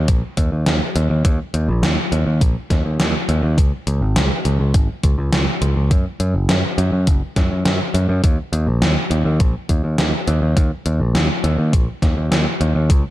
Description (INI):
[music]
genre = synthwave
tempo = 103 BPM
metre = 4/4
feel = straight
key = Eb minor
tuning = A4 = 440 Hz
[part]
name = picked electric bass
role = bass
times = 0.0-13.0 s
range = Gb1 to Gb2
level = -17 LUFS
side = equal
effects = sidechain pumping
[part]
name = electronic kick drum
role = drums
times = 0.1-13.0 s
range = none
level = -16 LUFS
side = equal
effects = overdrive
[part]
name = gated 80s digital drum machine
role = drums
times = 0.1-13.0 s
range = hi-hat, snare drum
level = -21 LUFS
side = equal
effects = gated reverb, gated reverb snare, overdrive
[sound]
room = light reverb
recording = dark, warm production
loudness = -15 LUFS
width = side -15 dB against mid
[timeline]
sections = 0.0-13.1 A section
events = none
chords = none